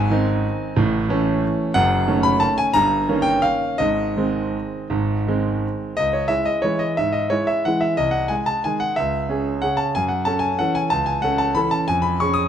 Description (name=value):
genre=classical, piano waltz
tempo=156-199 BPM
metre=3/4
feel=rubato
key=C# minor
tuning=A4 = 441 Hz
part: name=clear concert grand piano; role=solo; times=0.0-12.5 s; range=F#1 to D#6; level=-18 LUFS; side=equal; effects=none
room=moderate recital hall reverb, RT60 1.3 s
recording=close, detailed microphones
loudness=-18 LUFS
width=side -9 dB against mid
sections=0.0-6.0 A section; 6.0-12.5 B section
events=none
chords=0.0 G#; 0.8 A; 1.7 D#m7b5/F#; 2.7 D#7/G; 3.8 G#; 6.0 C#m; 8.0 G#/B#; 9.0 C#m; 9.9 F#m7; 11.9 C#/E#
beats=0.10 0.44 | 0.77 1.09 1.42 | 1.74 2.07 2.41 | 2.74 3.07 3.42 | 3.79 4.17 4.54 | 4.91 5.26 5.63 | 5.98 6.31 6.64 | 6.98 7.32 7.66 | 7.98 8.30 8.64 | 8.97 9.29 9.62 | 9.95 10.26 10.58 | 10.91 11.23 11.56 | 11.88 12.19